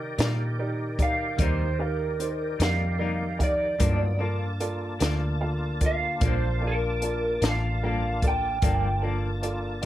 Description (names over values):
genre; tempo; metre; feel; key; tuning
slow blues; 50 BPM (dotted quarters); 12/8; straight; G minor; A4 = 440 Hz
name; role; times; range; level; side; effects
clear upright piano; accompaniment; 0.0-9.9 s; Eb4 to A5; -34 LUFS; right 3 dB; none
tonewheel organ; sustained chords; 0.0-9.9 s; Eb3 to A5; -35 LUFS; left 1 dB; overdrive, chorus vibrato, slow rotary speaker
vintage muted fingered electric bass; bass; 0.0-9.8 s; G1 to C3; -28 LUFS; equal; none
semi-hollow electric guitar; accompaniment; 0.2-9.3 s; G2 to Eb4; -34 LUFS; left 5 dB; tremolo
compact cocktail drum kit; drums; 0.2-9.9 s; hi-hat, kick drum, snare drum; -26 LUFS; equal; none
electric guitar through a small old amp; melody; 1.0-9.0 s; Bb4 to G5; -28 LUFS; right 1 dB; lush chorus
room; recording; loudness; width
light reverb; none; -24 LUFS; side -13 dB against mid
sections
0.0-9.9 A section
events
none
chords
0.0 Cm7; 3.8 Gm7